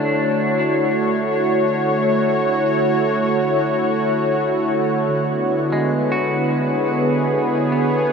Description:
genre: ambient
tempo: free time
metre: none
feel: none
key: D lydian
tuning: A4 = 439 Hz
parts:
  - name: warm analog pad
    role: sustained chords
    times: 0.0-8.1 s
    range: D3 to C#5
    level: -17 LUFS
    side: equal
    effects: chorus, shimmer reverb
  - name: semi-hollow electric guitar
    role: arpeggios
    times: 0.0-8.1 s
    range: G#3 to F#4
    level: -26 LUFS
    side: left 1 dB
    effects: diffuse ambient delay, shimmer reverb
room: wet huge ambient reverb, RT60 9.4 s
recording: none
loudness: -16 LUFS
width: side -6 dB against mid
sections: 0.0-8.1 A section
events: fade-out on clean electric guitar 0.0-8.1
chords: 0.0 Dmaj7; 5.1 E/D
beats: free time

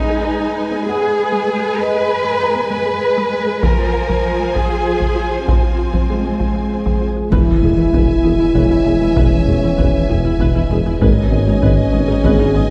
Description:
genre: cinematic, hybrid orchestral and electronic film score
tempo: 65 BPM (dotted quarters)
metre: 6/8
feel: straight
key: unclear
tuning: A4 = 443 Hz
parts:
  - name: warm symphonic violin section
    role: second line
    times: 0.0-12.7 s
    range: B4 to G#5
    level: -28 LUFS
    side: equal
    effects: none
  - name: warm symphonic viola section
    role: accompaniment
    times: 0.0-12.6 s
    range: F3 to B4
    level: -28 LUFS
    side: equal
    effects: none
  - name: resonant blip pluck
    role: arpeggios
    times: 0.0-12.6 s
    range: E3 to G#4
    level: -29 LUFS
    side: equal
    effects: none
  - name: warm symphonic cello section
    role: bass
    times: 0.0-12.6 s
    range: E2 to B4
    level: -24 LUFS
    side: equal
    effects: none
  - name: felt-muted upright piano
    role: texture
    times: 0.0-12.7 s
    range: Ab3 to A#5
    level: -27 LUFS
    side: equal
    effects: tape echo
  - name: solo taiko drums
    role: drums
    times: 3.6-12.7 s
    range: none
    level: -21 LUFS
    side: equal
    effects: none
  - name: warm French horn section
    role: sustained chords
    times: 6.1-12.7 s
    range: B3 to Ab4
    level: -21 LUFS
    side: equal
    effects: none
  - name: warm symphonic violin section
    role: melody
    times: 7.3-12.7 s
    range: G#5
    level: -35 LUFS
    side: equal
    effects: none
  - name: dark trombone section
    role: sustained chords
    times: 7.3-12.7 s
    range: B2 to G#3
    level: -27 LUFS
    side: equal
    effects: none
  - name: smooth synth bass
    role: riff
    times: 7.3-12.6 s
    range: E2 to G#3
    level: -24 LUFS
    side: equal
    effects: none
  - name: mellow tuba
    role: bass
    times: 7.3-12.6 s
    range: E1 to G#1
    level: -24 LUFS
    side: equal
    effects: none
  - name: punchy sub bass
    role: bass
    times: 7.3-12.7 s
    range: E1 to G#1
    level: -24 LUFS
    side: equal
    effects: none
  - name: warm symphonic double bass section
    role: bass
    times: 7.3-12.6 s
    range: E1 to G#1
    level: -24 LUFS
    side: equal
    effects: none
  - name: impact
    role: sound effects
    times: 7.3-9.2 s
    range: none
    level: -26 LUFS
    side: equal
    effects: none
room: wet recital hall reverb, RT60 1.5 s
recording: heard from further back in the room, nothing above 10.6 kHz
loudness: -16 LUFS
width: mono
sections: 0.0-7.3 A section; 7.3-12.7 B section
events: impact 7.3-9.2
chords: 0.0 G#m; 3.6 Fm; 7.3 E; 11.0 G#m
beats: 0.86 | 1.78 2.71 | 3.63 4.55 | 5.48 6.40 | 7.32 8.25 | 9.17 10.09 | 11.02 11.94

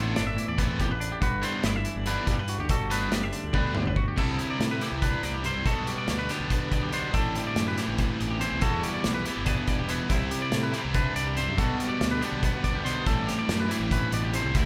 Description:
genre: math rock and midwest emo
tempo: 284 BPM (eighths)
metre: 7/8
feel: straight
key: G major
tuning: A4 = 444 Hz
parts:
  - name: twelve-string electric guitar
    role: accompaniment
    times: 0.0-14.7 s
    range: D2 to G4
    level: -35 LUFS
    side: equal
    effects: none
  - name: twangy electric guitar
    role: arpeggios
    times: 0.0-14.7 s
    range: G4 to E5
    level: -35 LUFS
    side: equal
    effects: none
  - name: cranked stack guitar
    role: riff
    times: 0.0-14.7 s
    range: A2 to A4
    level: -34 LUFS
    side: equal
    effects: overdrive
  - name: fuzz fingered electric bass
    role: bass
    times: 0.0-14.7 s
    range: E1 to A2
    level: -35 LUFS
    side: equal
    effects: overdrive
  - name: loose indie drum kit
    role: drums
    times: 0.2-14.6 s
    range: crash cymbal, hi-hat, kick drum, snare drum, toms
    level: -32 LUFS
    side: equal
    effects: none
room: moderate large studio reverb, RT60 1.2 s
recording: band playing live in one room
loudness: -27 LUFS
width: mono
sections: 0.0-4.2 A section; 4.2-14.7 B section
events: drum fill 3.5-4.2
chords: 0.0 Am11; 1.2 Em9/G; 2.7 Gmaj9; 4.2 Cmaj9; 5.7 Gmaj7/B; 7.1 Am11; 8.6 Em9; 10.1 Cmaj9; 11.6 Gmaj7/B; 13.1 Am11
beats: 0.16 0.38 0.59 0.80 1.01 | 1.22 1.43 1.64 1.85 2.07 2.28 2.49 | 2.70 2.91 3.12 3.33 3.54 3.76 3.97 | 4.18 4.39 4.60 4.81 5.03 5.24 5.45 | 5.66 5.87 6.08 6.29 6.51 6.72 6.93 | 7.14 7.35 7.57 7.78 7.99 8.20 8.41 | 8.62 8.83 9.05 9.26 9.47 9.68 9.89 | 10.10 10.31 10.53 10.74 10.95 11.16 11.37 | 11.58 11.80 12.01 12.22 12.43 12.64 12.85 | 13.06 13.28 13.49 13.70 13.91 14.12 14.34 | 14.55

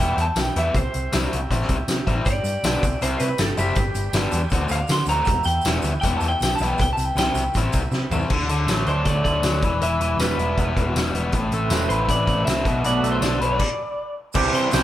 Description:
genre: indie rock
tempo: 159 BPM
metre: 4/4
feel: straight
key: unclear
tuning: A4 = 440 Hz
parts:
  - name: electric guitar through a small old amp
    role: melody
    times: 0.0-14.8 s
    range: G4 to C6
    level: -25 LUFS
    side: equal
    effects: none
  - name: combo organ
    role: sustained chords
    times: 0.0-8.3, 11.3-13.6 s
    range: C3 to G5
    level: -35 LUFS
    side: right 4 dB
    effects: none
  - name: biting overdriven guitar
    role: riff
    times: 0.0-14.8 s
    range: A2 to B4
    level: -25 LUFS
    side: left 3 dB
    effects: spring reverb
  - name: twangy electric guitar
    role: riff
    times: 0.0-14.8 s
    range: C3 to B4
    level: -28 LUFS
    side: right 7 dB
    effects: none
  - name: hollow-body short-scale picked electric bass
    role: bass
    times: 0.0-14.8 s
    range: E1 to D3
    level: -25 LUFS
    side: equal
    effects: none
  - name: loose indie drum kit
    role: drums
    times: 0.2-14.8 s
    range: crash cymbal, hi-hat, kick drum, snare drum, tambourine, toms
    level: -24 LUFS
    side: equal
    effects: none
  - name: tube shaker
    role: percussion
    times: 2.3-8.3, 14.3-14.8 s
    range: none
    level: -40 LUFS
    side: right 7 dB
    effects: none
room: light reverb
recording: band playing live in one room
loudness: -19 LUFS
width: side -13 dB against mid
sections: 0.0-8.3 A section; 8.3-14.4 B section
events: clean electric guitar solo 0.0-8.3; drum fill 7.9-8.3; stop 13.6-14.4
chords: 0.0 Em; 0.7 Cmaj7; 2.3 G; 2.8 Cmaj7; 3.8 G; 4.5 D7; 5.3 Em; 6.8 Cmaj7; 8.3 D; 9.6 Em; 11.3 Amadd9; 12.7 Bm7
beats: 0.37 | 0.75 1.13 1.50 1.88 | 2.26 2.64 3.02 3.39 | 3.77 4.15 4.53 4.90 | 5.28 5.66 6.04 6.41 | 6.79 7.17 7.55 7.92 | 8.30 8.68 9.06 9.44 | 9.81 10.19 10.57 10.95 | 11.33 11.71 12.09 12.46 | 12.84 13.22 13.60 13.98 | 14.36 14.73

